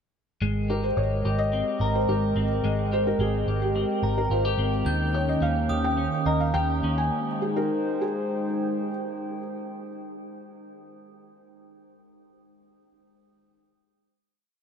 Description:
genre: dream pop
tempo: 107 BPM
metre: 4/4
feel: uneven beats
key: Ab major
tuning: A4 = 437 Hz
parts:
  - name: hollow soft pad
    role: sustained chords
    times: 0.4-9.6 s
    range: Eb3 to G5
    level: -30 LUFS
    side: right 1 dB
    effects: chorus
  - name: clean electric guitar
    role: arpeggios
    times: 0.4-7.7 s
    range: Eb3 to Bb4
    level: -31 LUFS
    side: left 2 dB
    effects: lush chorus, ping-pong delay
  - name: vintage muted picked electric bass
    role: bass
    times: 0.4-7.1 s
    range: Ab1 to Eb2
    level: -27 LUFS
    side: equal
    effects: none
  - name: felt-muted upright piano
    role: melody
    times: 0.7-8.9 s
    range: G4 to Ab5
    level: -29 LUFS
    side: left 1 dB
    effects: ping-pong delay
  - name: glockenspiel with brass mallets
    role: texture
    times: 4.9-7.0 s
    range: Eb6 to G6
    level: -37 LUFS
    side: right 3 dB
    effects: ping-pong delay
room: moderate huge ambient reverb, RT60 6.6 s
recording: none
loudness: -23 LUFS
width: side -7 dB against mid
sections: 0.4-9.6 A section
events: slowing down 4.9-9.6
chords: 0.4 Abmaj9; 4.9 Eb7; 7.1 Abmaj7

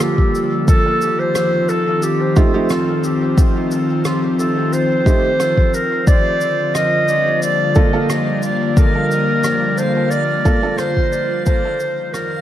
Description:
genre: ambient dub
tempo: 89 BPM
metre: 4/4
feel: straight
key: G minor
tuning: A4 = 440 Hz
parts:
  - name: mellow clarinet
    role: melody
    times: 0.0-12.4 s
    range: F4 to Eb5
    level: -18 LUFS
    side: equal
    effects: dub echo
  - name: airy breathy pad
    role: sustained chords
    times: 0.0-12.4 s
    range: D3 to F4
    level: -19 LUFS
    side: left 1 dB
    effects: chorus, vintage 12-bit sampler grit
  - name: cabasa and rim click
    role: drums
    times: 0.0-12.3 s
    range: none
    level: -29 LUFS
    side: equal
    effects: dub echo
  - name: electronic kick drum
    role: drums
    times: 0.2-11.6 s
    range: none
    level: -14 LUFS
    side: equal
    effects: none
  - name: warm upright piano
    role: stabs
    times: 2.4-10.8 s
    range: A3 to A4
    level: -25 LUFS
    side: right 4 dB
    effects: dub echo
  - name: backwards swelling texture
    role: texture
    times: 7.6-12.4 s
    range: F4 to F5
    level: -32 LUFS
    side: right 2 dB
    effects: built-in reverb
room: moderate concert hall reverb, RT60 2.2 s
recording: dark, warm production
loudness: -14 LUFS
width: side -12 dB against mid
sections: 0.0-12.4 A section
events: fade-out 9.7-12.4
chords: 0.0 Gm7; 0.7 F7; 6.1 Gm7; 11.5 F7(no3)

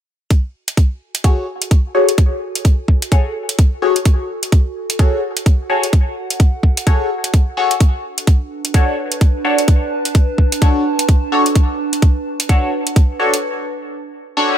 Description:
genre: bass house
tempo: 128 BPM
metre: 4/4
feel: swing 60% on 16ths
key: F# minor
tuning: A4 = 440 Hz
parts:
  - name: electronic hi-hat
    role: drums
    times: 0.3-13.4 s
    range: none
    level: -21 LUFS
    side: right 2 dB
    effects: none
  - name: electronic kick drum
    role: drums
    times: 0.3-13.1 s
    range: none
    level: -12 LUFS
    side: equal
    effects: overdrive
  - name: warbly tape-like pad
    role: texture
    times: 1.6-13.4 s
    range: D4 to A5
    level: -25 LUFS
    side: right 3 dB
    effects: chorus, built-in reverb, phaser, sidechain pumping
  - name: band-passed chord stab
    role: stabs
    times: 1.2-14.6 s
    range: D4 to C#5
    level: -19 LUFS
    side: left 2 dB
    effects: phaser, lush chorus, sidechain pumping, tape echo
  - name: reverse cymbal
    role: sound effects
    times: 14.5-14.6 s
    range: none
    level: -20 LUFS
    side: left 4 dB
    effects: none
room: little or no reverb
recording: none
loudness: -13 LUFS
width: side -10 dB against mid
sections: 0.3-14.6 A section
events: fade-in on ambient pad 0.3-14.6; filter sweep on synth stab 0.3-14.6; break 13.4-14.6; reverse cymbal 14.5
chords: 0.3 F#madd9; 7.8 Bm7

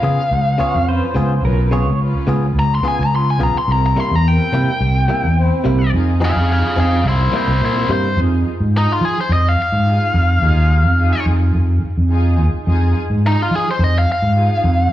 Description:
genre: blues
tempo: 107 BPM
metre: 4/4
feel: swing 54% on 16ths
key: F minor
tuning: A4 = 439 Hz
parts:
  - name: biting lead guitar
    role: melody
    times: 0.0-14.9 s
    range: Eb4 to C6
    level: -19 LUFS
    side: left 2 dB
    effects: overdrive, slapback echo
  - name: muted studio string section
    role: sustained chords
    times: 0.0-14.6 s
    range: C4 to C5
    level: -27 LUFS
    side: right 2 dB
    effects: none
  - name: direct-recorded clean electric guitar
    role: stabs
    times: 0.0-8.1 s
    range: C3 to Ab4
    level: -24 LUFS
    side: left 2 dB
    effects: slapback echo
  - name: fingered electric bass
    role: bass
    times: 0.0-14.9 s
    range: Cb2 to F3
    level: -15 LUFS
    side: equal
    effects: none
  - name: electric guitar through a small old amp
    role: second line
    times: 0.6-2.0 s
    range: Bb4 to Db5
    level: -27 LUFS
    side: right 5 dB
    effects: tremolo, slapback echo
room: light reverb, digital ambience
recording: live gig heard through the venue's PA, club reverb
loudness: -13 LUFS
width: side -13 dB against mid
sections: 0.0-8.2 A section; 8.2-14.9 B section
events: lead electric guitar solo 8.2-14.9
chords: 0.0 Db7; 3.7 C7; 5.9 Fm7; 7.1 C7; 8.2 Fm7

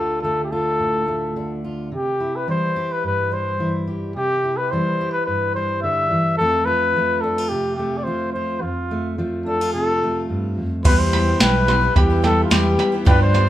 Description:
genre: indie folk with a building arrangement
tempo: 107 BPM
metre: 4/4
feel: straight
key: unclear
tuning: A4 = 442 Hz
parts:
  - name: mellow trumpet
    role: melody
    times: 0.0-13.5 s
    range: F4 to E5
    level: -20 LUFS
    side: left 1 dB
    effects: none
  - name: fingerpicked steel-string acoustic guitar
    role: accompaniment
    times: 0.0-10.9 s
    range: D2 to G4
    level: -24 LUFS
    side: equal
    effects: none
  - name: bright grand piano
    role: accompaniment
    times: 10.8-13.5 s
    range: G1 to D5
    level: -27 LUFS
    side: equal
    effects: none
  - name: picked twelve-string acoustic guitar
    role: accompaniment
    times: 10.8-13.5 s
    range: G2 to G4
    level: -24 LUFS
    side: left 3 dB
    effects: none
  - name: warm chamber string section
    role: sustained chords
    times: 10.8-13.5 s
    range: B2 to G4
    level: -30 LUFS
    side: right 1 dB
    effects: none
  - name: soft vintage rhythm box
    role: drums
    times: 10.8-13.4 s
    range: crash cymbal, kick drum, snare drum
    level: -18 LUFS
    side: equal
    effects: none
  - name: bluegrass banjo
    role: arpeggios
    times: 10.9-13.5 s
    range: G5 to C6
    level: -27 LUFS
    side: right 6 dB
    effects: none
  - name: picked electric bass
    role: bass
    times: 10.9-13.5 s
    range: B1 to G2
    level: -19 LUFS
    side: right 1 dB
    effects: none
room: moderate large studio reverb, RT60 1.2 s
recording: band playing live in one room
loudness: -18 LUFS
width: side -13 dB against mid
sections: 0.0-10.9 A section; 10.9-13.5 B section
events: none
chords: 0.0 Dm; 1.9 C; 6.4 F; 10.9 Em

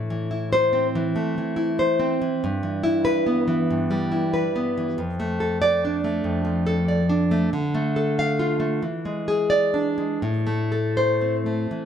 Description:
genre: romantic piece for solo classical guitar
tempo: 80-97 BPM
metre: 4/4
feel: rubato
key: A minor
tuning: A4 = 440 Hz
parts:
  - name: nylon-string guitar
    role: solo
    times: 0.0-11.9 s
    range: F2 to F5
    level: -20 LUFS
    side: equal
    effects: none
room: moderate recital hall reverb, RT60 1.7 s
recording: none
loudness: -20 LUFS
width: side -8 dB against mid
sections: 0.0-11.9 A section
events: none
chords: 0.0 Am; 2.4 Em/G; 5.0 Dm/F; 7.5 Dm; 8.8 E7; 10.2 Am

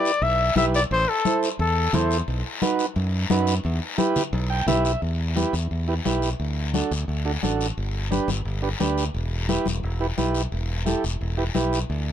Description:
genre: latin, cumbia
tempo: 175 BPM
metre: 4/4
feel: straight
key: E harmonic minor, E minor from 5.0 s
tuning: A4 = 441 Hz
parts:
  - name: warm trumpet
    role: melody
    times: 0.0-2.2 s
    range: A4 to E5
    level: -23 LUFS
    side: left 3 dB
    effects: none
  - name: overdriven combo organ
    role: accompaniment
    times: 0.0-11.8 s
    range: D4 to G5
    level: -26 LUFS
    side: right 4 dB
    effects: none
  - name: guiro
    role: percussion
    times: 0.1-12.1 s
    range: none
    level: -33 LUFS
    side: left 6 dB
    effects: none
  - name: modern bright fingered electric bass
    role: bass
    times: 0.2-12.1 s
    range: E1 to F#2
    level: -25 LUFS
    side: equal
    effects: none
  - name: congas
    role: percussion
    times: 0.2-11.7 s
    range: none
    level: -28 LUFS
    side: left 6 dB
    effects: none
room: light reverb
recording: dark, warm production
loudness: -21 LUFS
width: side -10 dB against mid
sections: 0.0-5.0 A section; 5.0-12.1 B section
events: transistor combo organ fill 4.3-5.0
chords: 0.0 Em; 0.9 Am; 2.3 B; 3.7 Em; 6.4 D; 7.8 G; 9.2 Em

